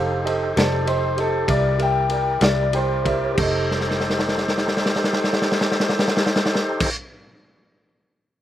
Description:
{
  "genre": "slow blues",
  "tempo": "61-67 BPM (dotted quarters)",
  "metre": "12/8",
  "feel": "straight",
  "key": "F mixolydian",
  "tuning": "A4 = 445 Hz",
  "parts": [
    { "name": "warm grand piano", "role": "accompaniment", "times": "0.0-6.9 s", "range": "G4 to G5", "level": "-26 LUFS", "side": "right 4 dB", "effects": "slapback echo" },
    { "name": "tonewheel organ", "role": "sustained chords", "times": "0.0-6.9 s", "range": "Eb4 to D5", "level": "-25 LUFS", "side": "left 1 dB", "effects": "slow rotary speaker" },
    { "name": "vintage muted fingered electric bass", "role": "bass", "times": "0.0-6.9 s", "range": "F1 to C2", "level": "-25 LUFS", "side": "equal", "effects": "none" },
    { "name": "raw garage drum kit", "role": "drums", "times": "0.3-7.0 s", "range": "crash cymbal, kick drum, ride cymbal, snare drum", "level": "-22 LUFS", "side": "equal", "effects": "none" },
    { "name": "electric guitar through a small old amp", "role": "melody", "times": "0.6-3.4 s", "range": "A4 to G5", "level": "-23 LUFS", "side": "left 3 dB", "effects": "none" }
  ],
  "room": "little or no reverb",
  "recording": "recorded outdoors, with no room sound",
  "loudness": "-18 LUFS",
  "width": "side -11 dB against mid",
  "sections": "0.0-3.4 A section; 3.4-7.3 B section",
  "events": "slowing down 0.0-3.4; clean electric guitar solo 0.0-3.4; drum fill 3.7-6.8",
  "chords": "0.0 F9; 1.5 C9; 3.4 F9"
}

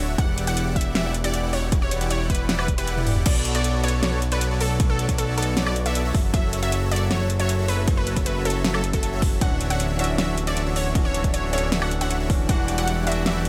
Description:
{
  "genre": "future bass",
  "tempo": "156 BPM",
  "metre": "4/4",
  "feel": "half-time",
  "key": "B minor",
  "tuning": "A4 = 440 Hz",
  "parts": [
    { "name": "unison pluck", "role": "melody", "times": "0.0-13.4 s", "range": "A4 to F#5", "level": "-32 LUFS", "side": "equal", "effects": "sidechain pumping, dub echo" },
    { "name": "supersaw chords", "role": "riff", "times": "0.0-13.4 s", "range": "D3 to F#5", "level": "-31 LUFS", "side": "equal", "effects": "sidechain pumping" },
    { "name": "fat analog bass", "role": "bass", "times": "0.0-13.5 s", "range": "D1 to B1", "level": "-27 LUFS", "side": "equal", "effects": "sidechain pumping" },
    { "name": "electronic kick drum", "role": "drums", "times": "0.2-12.6 s", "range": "none", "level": "-24 LUFS", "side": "equal", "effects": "overdrive" },
    { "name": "pop drum kit", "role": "drums", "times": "0.2-13.5 s", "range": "crash cymbal, hi-hat, ride cymbal, snare drum, toms, woodblock", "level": "-30 LUFS", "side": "equal", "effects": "overdrive" },
    { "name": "barky tine electric piano", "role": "accompaniment", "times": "9.4-13.5 s", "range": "E3 to A4", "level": "-33 LUFS", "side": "equal", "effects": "sidechain pumping, delay" }
  ],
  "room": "little or no reverb",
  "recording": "none",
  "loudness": "-23 LUFS",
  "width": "mono",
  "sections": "0.0-3.3 A section; 3.3-13.5 A section",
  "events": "drop 0.0-3.3, 3.3-13.5; kick drops out 2.9-3.3; drum fill 3.0",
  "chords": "0.2 Em9; 3.3 Bm9; 6.1 F#m7; 9.4 Dmaj9; 12.5 Em9"
}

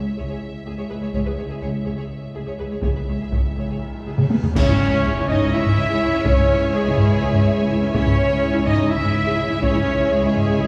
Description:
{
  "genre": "cinematic, epic orchestral film score",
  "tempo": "248 BPM (eighths)",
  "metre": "7/8",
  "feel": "straight",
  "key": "C# minor",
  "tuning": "A4 = 440 Hz",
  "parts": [
    { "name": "clear symphonic violin section", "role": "melody", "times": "0.0-10.7 s", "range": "G#4 to E5", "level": "-33 LUFS", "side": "equal", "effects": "none" },
    { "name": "dark French horn section", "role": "sustained chords", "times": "0.0-10.7 s", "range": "G#3 to E4", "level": "-27 LUFS", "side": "equal", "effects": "none" },
    { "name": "warm symphonic violin section", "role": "second line", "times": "0.2-10.7 s", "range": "G#4 to G#5", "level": "-36 LUFS", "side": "equal", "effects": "none" },
    { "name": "rich symphonic viola section", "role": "accompaniment", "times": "0.2-10.7 s", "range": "C#4 to C#5", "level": "-31 LUFS", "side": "equal", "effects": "none" },
    { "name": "clear symphonic cello section", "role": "bass", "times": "0.2-10.7 s", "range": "C#2 to E4", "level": "-32 LUFS", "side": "equal", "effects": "none" },
    { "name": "rich symphonic double bass section", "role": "bass", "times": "0.2-10.6 s", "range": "C#2", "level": "-28 LUFS", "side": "equal", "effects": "none" },
    { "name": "taiko ensemble", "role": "drums", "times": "1.1-10.6 s", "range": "none", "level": "-24 LUFS", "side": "equal", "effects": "none" },
    { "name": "cymbal swell, clash cymbals and concert bass drum", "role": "percussion", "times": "1.1-5.5 s", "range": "none", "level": "-31 LUFS", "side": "equal", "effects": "none" },
    { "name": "reverse cymbal and sub drop", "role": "sound effects", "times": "4.4-6.3 s", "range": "none", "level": "-39 LUFS", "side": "equal", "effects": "none" },
    { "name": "mellow large flute ensemble", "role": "second line", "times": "4.6-10.7 s", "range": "G#4 to E5", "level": "-32 LUFS", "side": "equal", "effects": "none" },
    { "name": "clear trombone section", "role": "sustained chords", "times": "4.6-10.7 s", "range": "E3 to E4", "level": "-33 LUFS", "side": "equal", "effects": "none" },
    { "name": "pipe organ, foundations", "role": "sustained chords", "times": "4.6-10.7 s", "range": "C#4 to E5", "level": "-35 LUFS", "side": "equal", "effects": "none" },
    { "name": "warm trumpet", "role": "stabs", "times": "4.6-10.7 s", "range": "G#4 to E5", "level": "-30 LUFS", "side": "equal", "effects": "none" }
  ],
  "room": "wet church reverb, RT60 3.6 s",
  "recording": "recorded in a church or concert hall",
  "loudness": "-20 LUFS",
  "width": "mono",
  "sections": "0.0-4.6 A section; 4.6-10.7 B section",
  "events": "drum fill 4.2-4.6; reverse cymbal 4.4; band accent 4.6-5.0; impact 4.6-6.2",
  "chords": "0.0 C#m"
}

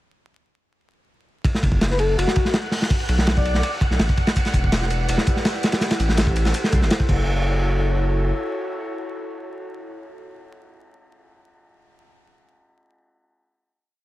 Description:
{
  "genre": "drum and bass, jungle",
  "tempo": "165 BPM",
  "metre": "4/4",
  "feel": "straight",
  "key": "F# phrygian",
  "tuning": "A4 = 441 Hz",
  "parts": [
    { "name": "crunchy breakbeat drum kit", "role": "drums", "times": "1.4-7.2 s", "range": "crash cymbal, hi-hat, kick drum, ride cymbal, snare drum", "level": "-21 LUFS", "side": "equal", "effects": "none" },
    { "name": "wind-like tuned noise texture", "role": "texture", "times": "1.9-7.3 s", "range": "F#5 to F#6", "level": "-32 LUFS", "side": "right 3 dB", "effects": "built-in reverb" },
    { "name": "saturated sub bass", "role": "bass", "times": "1.6-8.3 s", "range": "E1 to C2", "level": "-21 LUFS", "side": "equal", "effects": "tube saturation" },
    { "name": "breathy flute-like synth lead", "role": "melody", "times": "1.9-3.7 s", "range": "F#4 to D5", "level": "-27 LUFS", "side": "left 3 dB", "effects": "wide subtle chorus, dub echo" },
    { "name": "airy breathy pad", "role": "sustained chords", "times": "4.6-10.1 s", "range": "E4 to D5", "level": "-29 LUFS", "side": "equal", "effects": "chorus" },
    { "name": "breakbeat sampler-style drum kit", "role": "drums", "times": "4.4-7.0 s", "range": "hi-hat, snare drum", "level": "-34 LUFS", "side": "equal", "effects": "overdrive, high-pass filter on hats, high-pass filter on snare, high-pass filter on room" }
  ],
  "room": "small room ambience",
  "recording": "vinyl crackle",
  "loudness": "-18 LUFS",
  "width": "side -16 dB against mid",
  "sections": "1.5-7.3 drop; 7.3-10.2 final hit",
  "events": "drop 1.5-7.3",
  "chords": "1.5 N.C.; 2.9 Bm; 4.4 Em7; 5.8 Am7; 7.1 F#m7"
}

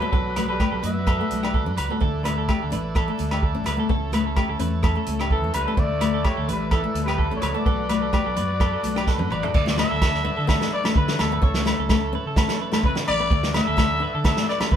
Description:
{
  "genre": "highlife guitar band",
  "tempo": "127 BPM",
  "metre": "4/4",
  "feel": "swing 54% on 16ths",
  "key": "D major",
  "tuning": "A4 = 440 Hz",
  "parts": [
    { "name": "growling trumpet", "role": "melody", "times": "0.0-1.7, 5.3-14.8 s", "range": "A4 to E5", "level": "-27 LUFS", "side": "left 3 dB", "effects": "none" },
    { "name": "warm alto saxophone", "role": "second line", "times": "0.0-1.8, 5.3-9.1 s", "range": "E3 to B3", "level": "-35 LUFS", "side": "right 3 dB", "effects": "none" },
    { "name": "flamenco guitar", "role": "accompaniment", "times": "0.0-14.7 s", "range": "A3 to D4", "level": "-30 LUFS", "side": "left 5 dB", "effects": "none" },
    { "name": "combo organ", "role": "sustained chords", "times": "0.0-14.8 s", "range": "C#4 to B4", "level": "-35 LUFS", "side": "equal", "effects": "none" },
    { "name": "clean electric guitar", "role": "arpeggios", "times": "0.0-14.8 s", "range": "G4 to D5", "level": "-31 LUFS", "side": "right 6 dB", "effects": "harmonic tremolo" },
    { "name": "congas", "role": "percussion", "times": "0.0-14.7 s", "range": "none", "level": "-31 LUFS", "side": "left 4 dB", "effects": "none" },
    { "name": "fingered electric bass", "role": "bass", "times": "0.1-14.8 s", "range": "A1 to D3", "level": "-28 LUFS", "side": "equal", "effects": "none" },
    { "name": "vintage drum kit", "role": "drums", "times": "0.1-14.8 s", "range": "crash cymbal, hi-hat, kick drum, rim click, snare drum, toms", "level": "-24 LUFS", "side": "right 1 dB", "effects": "none" },
    { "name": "agogo bells", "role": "percussion", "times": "0.4-14.7 s", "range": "none", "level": "-30 LUFS", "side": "equal", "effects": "none" }
  ],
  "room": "moderate studio reverb, RT60 0.5 s",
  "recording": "band playing live in one room",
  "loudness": "-20 LUFS",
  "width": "side -9 dB against mid",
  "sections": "0.0-9.6 A section; 9.6-14.8 B section",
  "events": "drum fill 9.1-9.6",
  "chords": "0.1 Bm; 2.0 Dsus2; 3.9 A/C#; 5.8 Dsus2; 7.7 Bm; 9.6 Dsus2; 11.4 A/C#; 13.3 Dsus2"
}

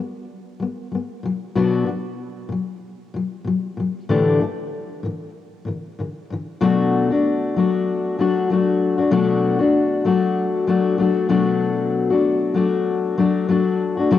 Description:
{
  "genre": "pop",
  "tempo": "96 BPM",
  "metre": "4/4",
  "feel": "swing 55% on 16ths",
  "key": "unclear",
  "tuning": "A4 = 440 Hz",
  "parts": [
    { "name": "fingerpicked steel-string acoustic guitar", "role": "solo", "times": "0.0-14.2 s", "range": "A2 to G4", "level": "-18 LUFS", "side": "left 4 dB", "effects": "cassette tape" }
  ],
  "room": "light reverb, studio reverb",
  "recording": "home recording on cassette",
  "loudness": "-18 LUFS",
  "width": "side -12 dB against mid",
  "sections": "0.0-6.6 A section; 6.6-14.2 B section",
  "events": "none",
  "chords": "0.0 G; 1.2 B5; 4.1 Asus4; 6.6 D6/B"
}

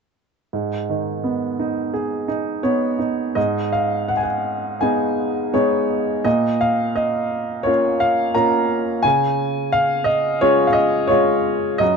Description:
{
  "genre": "classical, lyrical solo piano",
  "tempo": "85 BPM",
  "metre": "4/4",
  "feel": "rubato",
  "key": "G# dorian",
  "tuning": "A4 = 440 Hz",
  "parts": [
    { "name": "clear upright piano", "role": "solo", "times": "0.5-12.0 s", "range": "F#2 to A#5", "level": "-17 LUFS", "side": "equal", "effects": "none" }
  ],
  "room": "light reverb",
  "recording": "dark, warm production, nothing above 8.0 kHz",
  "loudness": "-17 LUFS",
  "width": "side -5 dB against mid",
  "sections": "0.5-3.4 A section; 3.4-12.0 B section",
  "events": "none",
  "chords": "0.5 G#m; 6.3 A#m; 9.0 C#"
}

